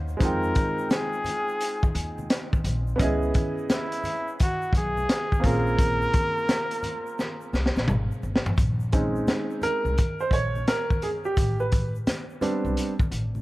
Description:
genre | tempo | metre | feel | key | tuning
hip hop, jazz-hop | 86 BPM | 4/4 | swing 65% on 16ths | Bb dorian | A4 = 440 Hz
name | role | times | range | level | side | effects
warm upright piano | accompaniment | 0.0-12.9 s | G3 to G5 | -29 LUFS | right 2 dB | none
upright bass | bass | 0.0-13.4 s | G1 to F2 | -28 LUFS | equal | none
tube shaker and congas | percussion | 0.1-13.4 s | none | -41 LUFS | left 1 dB | none
warm flugelhorn | melody | 0.2-7.9 s | Fb4 to Bb4 | -28 LUFS | equal | none
crunchy breakbeat drum kit | drums | 0.2-13.3 s | hi-hat, kick drum, snare drum, toms | -25 LUFS | equal | none
room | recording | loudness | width
light reverb, small room ambience | dark, warm production | -23 LUFS | side -18 dB against mid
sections
0.0-8.6 A section; 8.6-13.4 B section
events
drum fill 7.2-8.6; upright piano solo 8.6-13.4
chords
0.2 Fm9; 3.0 Dbm9; 5.4 Bbm9; 8.6 Bbm11; 11.4 Am11

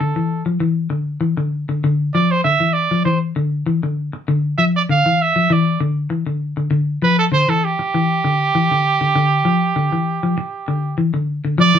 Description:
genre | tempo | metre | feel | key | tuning
afrobeat | 98 BPM | 4/4 | straight | unclear | A4 = 440 Hz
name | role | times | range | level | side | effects
bright trumpet | melody | 0.0-11.8 s | G4 to F5 | -17 LUFS | right 5 dB | none
semi-hollow electric guitar | arpeggios | 0.0-11.8 s | D3 to F3 | -17 LUFS | left 3 dB | vibrato effect
room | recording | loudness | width
moderate studio reverb, RT60 0.5 s | band playing live in one room | -16 LUFS | side -8 dB against mid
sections
0.0-11.6 A section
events
none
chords
0.0 G5

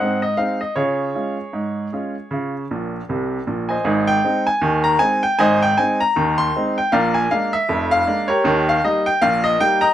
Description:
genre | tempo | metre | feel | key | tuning
ragtime piano | 78 BPM | 2/4 | swing 58% on 16ths | Db major, Ab major from 3.9 s | A4 = 440 Hz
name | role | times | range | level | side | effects
clear baby grand piano | solo | 0.0-9.9 s | F1 to C6 | -16 LUFS | equal | none
room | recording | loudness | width
light reverb | none | -17 LUFS | side -11 dB against mid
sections
0.0-3.9 A section; 3.9-9.9 B section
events
grand piano fill 2.7-3.9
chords
0.0 Ab; 0.8 Db; 3.9 Ab; 6.9 Bb7; 8.5 Eb

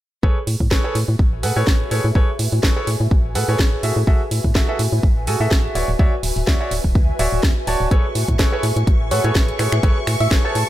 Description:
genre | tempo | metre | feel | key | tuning
piano house | 125 BPM | 4/4 | swing 55% on 16ths | A major | A4 = 441 Hz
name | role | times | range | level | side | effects
clear upright piano | riff | 0.2-10.6 s | F#4 to A5 | -24 LUFS | right 1 dB | sidechain pumping, ping-pong delay
organ-like FM bass | bass | 0.2-10.6 s | D1 to A2 | -21 LUFS | equal | sidechain pumping
electronic kick drum | drums | 0.2-10.4 s | none | -16 LUFS | equal | studio ambience
ethereal airy pad | texture | 1.0-10.7 s | F#4 to G#5 | -29 LUFS | left 1 dB | ensemble chorus, built-in reverb, tremolo, sidechain pumping
house drum kit | drums | 0.5-10.7 s | finger snaps, hi-hat, snare drum | -24 LUFS | right 1 dB | studio ambience
string machine, violins | sustained chords | 7.9-10.7 s | C#6 | -30 LUFS | equal | ensemble chorus, sidechain pumping
soft struck synth lead | melody | 9.1-10.6 s | C#5 to A5 | -24 LUFS | right 1 dB | chorus, phaser, cassette tape
room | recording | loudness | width
little or no reverb | none | -16 LUFS | side -14 dB against mid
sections
0.2-10.7 A section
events
none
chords
0.2 Amaj9; 3.8 F#m9/A; 5.8 Dmaj9; 7.9 Amaj9

